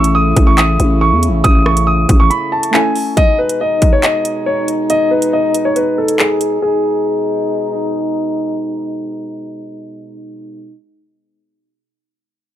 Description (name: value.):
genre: hip hop, drill.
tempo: 139 BPM.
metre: 4/4.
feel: half-time.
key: G# phrygian.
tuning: A4 = 442 Hz.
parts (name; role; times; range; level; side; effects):
dark grand piano; melody; 0.0-7.9 s; G#4 to D#6; -15 LUFS; equal; low-pass filter, digital delay.
warbly lo-fi synth keys; accompaniment; 0.0-3.2 s; A3 to A4; -21 LUFS; left 2 dB; chorus, low-pass filter.
mellow French horn section; sustained chords; 0.0-10.8 s; B2 to E4; -20 LUFS; right 1 dB; low-pass filter.
growling 808-style bass; bass; 0.0-2.3 s; A1 to E2; -13 LUFS; equal; none.
drill drum kit; drums; 0.0-6.5 s; handclaps, hi-hat, kick drum, rim click; -14 LUFS; equal; overdrive.
room: little or no reverb.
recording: none.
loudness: -12 LUFS.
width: side -11 dB against mid.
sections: 0.0-3.2 A section; 3.2-6.6 B section; 6.6-10.1 C section.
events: break 2.3-3.2; filter sweep 3.2-6.6.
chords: 0.0 A; 3.2 G#m.